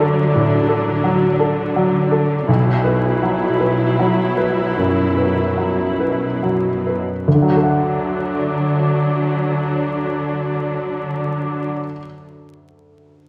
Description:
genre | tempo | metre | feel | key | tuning
cinematic | 46-58 BPM | 4/4 | rubato | D major | A4 = 441 Hz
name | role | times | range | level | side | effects
clear concert grand piano | accompaniment | 0.0-13.3 s | B1 to F#5 | -20 LUFS | equal | none
warm symphonic viola section | accompaniment | 0.0-11.7 s | F#3 to E4 | -24 LUFS | equal | none
rich symphonic cello section | bass | 0.0-11.7 s | B2 to D3 | -26 LUFS | equal | none
room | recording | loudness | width
wet scoring stage reverb, RT60 1.6 s | vinyl crackle | -18 LUFS | mono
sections
0.0-7.3 A section; 7.3-12.4 B section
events
slowing down 0.0-7.3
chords
0.0 D; 2.5 Bsus4; 7.3 D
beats
0.34 1.39 | 2.48 3.59 4.74 5.97 | 7.26 8.55 9.83 11.12

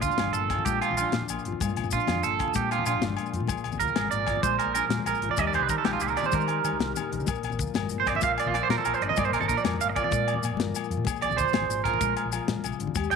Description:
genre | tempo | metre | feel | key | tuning
highlife guitar band | 127 BPM (dotted quarters) | 12/8 | straight | Bb major | A4 = 440 Hz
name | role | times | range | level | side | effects
mellow electric guitar | accompaniment | 0.0-13.2 s | Bb2 to Bb4 | -35 LUFS | left 11 dB | none
electric guitar at the edge of break-up | arpeggios | 0.0-13.2 s | F4 to G5 | -26 LUFS | right 9 dB | slapback echo
hollow-body short-scale fingered electric bass | bass | 0.0-13.2 s | G1 to Eb3 | -33 LUFS | left 1 dB | none
tight funk drum kit | drums | 0.0-13.2 s | hi-hat, kick drum, snare drum | -32 LUFS | left 5 dB | none
maracas | percussion | 0.0-13.2 s | none | -39 LUFS | left 15 dB | none
agogo bells | percussion | 0.2-13.2 s | none | -36 LUFS | left 14 dB | none
congas | percussion | 0.2-13.0 s | none | -35 LUFS | left 10 dB | none
room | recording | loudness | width
moderate spring reverb, RT60 1.7 s, small room ambience | 1960s-style stereo with parts hard left and right | -24 LUFS | side -5 dB against mid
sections
0.0-13.2 A section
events
clean electric guitar solo 0.0-13.2; drum fill 6.5-7.3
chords
0.0 Bb; 3.5 Bb7; 5.4 Eb; 7.3 Bb; 11.1 Bb7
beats
0.19 0.66 1.13 | 1.61 2.08 2.55 3.03 | 3.50 3.97 4.45 4.92 | 5.39 5.87 6.34 6.81 | 7.28 7.76 8.23 8.70 | 9.18 9.65 10.12 10.59 | 11.06 11.54 12.01 12.48 | 12.95

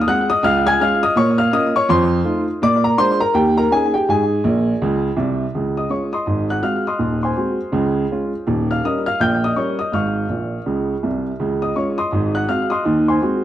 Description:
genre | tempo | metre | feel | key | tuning
jazz, stride piano | 164 BPM | 4/4 | swing 60% on 8ths | Db major | A4 = 440 Hz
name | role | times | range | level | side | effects
warm upright piano | solo | 0.0-13.4 s | Eb1 to Ab6 | -16 LUFS | equal | slapback echo
room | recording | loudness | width
moderate booth ambience, RT60 0.2 s | dry, close 1970s-style studio recording | -16 LUFS | side -12 dB against mid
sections
0.0-5.5 A section; 5.5-13.4 B section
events
upright piano fill 4.4-5.5, 10.3-11.4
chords
0.4 Db; 1.2 Bbm; 1.9 F7; 2.6 Bb7; 3.3 Eb7; 4.1 Absus2; 4.8 Ab; 5.5 Db; 6.3 Ab7; 7.0 Ab7/Eb; 7.7 Db; 8.5 Eb7; 9.9 Db/Ab; 10.7 Dbmaj7; 11.4 Db; 12.1 Ab7; 12.8 Ab7/Eb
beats
0.07 0.43 0.80 | 1.16 1.52 1.89 2.25 | 2.62 2.98 3.34 3.71 | 4.07 4.43 4.80 5.17 | 5.53 5.90 6.26 6.63 | 6.99 7.36 7.73 8.09 | 8.46 8.82 9.19 9.56 | 9.92 10.29 10.65 11.02 | 11.39 11.75 12.12 12.48 | 12.85 13.21

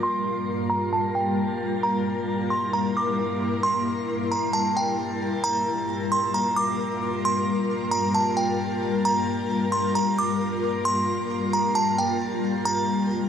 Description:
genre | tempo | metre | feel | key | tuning
hip hop | 133 BPM | 4/4 | half-time | G dorian | A4 = 445 Hz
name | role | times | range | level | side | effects
delicate synth tine bell | melody | 0.0-13.3 s | G5 to D6 | -25 LUFS | right 1 dB | chorus, low-pass filter, tape echo
ethereal airy pad | sustained chords | 0.0-13.3 s | G2 to D5 | -25 LUFS | left 2 dB | ensemble chorus, built-in reverb, tremolo, low-pass filter
room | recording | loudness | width
wet shimmer reverb, RT60 6.6 s | faint mains hum | -22 LUFS | side -8 dB against mid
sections
0.0-5.4 A section; 5.4-13.3 B section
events
filter sweep 0.0-5.4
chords
0.0 Gm7; 12.7 C7sus4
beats
| 0.03 0.48 0.93 1.38 | 1.83 2.28 2.73 3.18 | 3.63 4.09 4.54 4.99 | 5.44 5.89 6.34 6.79 | 7.24 7.70 8.15 8.60 | 9.05 9.50 9.95 10.40 | 10.85 11.30 11.76 12.21 | 12.66 13.11

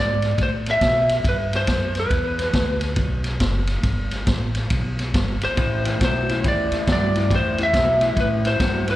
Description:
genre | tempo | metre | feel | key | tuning
electric blues shuffle | 139 BPM | 4/4 | swing 64% on 8ths | unclear | A4 = 440 Hz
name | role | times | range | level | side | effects
lightly driven lead guitar | melody | 0.0-2.8, 5.4-9.0 s | B4 to E5 | -22 LUFS | equal | slapback echo
upright bass | bass | 0.0-9.0 s | F#1 to B2 | -24 LUFS | equal | none
vintage drum kit | drums | 0.2-8.9 s | kick drum, ride cymbal, snare drum | -23 LUFS | equal | none
electric guitar through a small old amp | riff | 5.6-9.0 s | A2 to F#3 | -26 LUFS | left 3 dB | spring reverb, slapback echo
room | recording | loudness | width
light reverb, studio reverb | live gig heard through the venue's PA, club reverb | -18 LUFS | side -15 dB against mid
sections
0.0-9.0 A section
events
none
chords
0.4 Am9; 2.1 Em9; 5.6 Am9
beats
| 0.38 0.81 1.25 1.68 | 2.11 2.54 2.98 3.41 | 3.84 4.28 4.71 5.14 | 5.58 6.01 6.44 6.87 | 7.31 7.74 8.17 8.60

